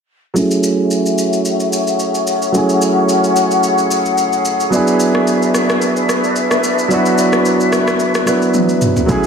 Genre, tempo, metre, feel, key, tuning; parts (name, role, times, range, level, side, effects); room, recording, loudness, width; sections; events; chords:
amapiano; 110 BPM; 4/4; swing 55% on 16ths; F# minor; A4 = 441 Hz
warm grand piano; accompaniment; 0.3-9.3 s; F#3 to B4; -15 LUFS; right 2 dB; low-pass filter
large flute ensemble; sustained chords; 0.4-9.3 s; C#4 to G#5; -17 LUFS; left 3 dB; sidechain pumping, low-pass filter
deep house drum kit; drums; 0.4-9.3 s; kick drum, rim click, shaker, toms; -20 LUFS; equal; overdrive
congas; percussion; 9.1-9.2 s; -22 LUFS; left 1 dB
moderate lush hall reverb, RT60 2.3 s; -12 LUFS; side -6 dB against mid
0.4-9.1 A section
filter sweep 0.4-9.1; drum fill 8.5-9.1
0.4 F#m9; 4.7 E7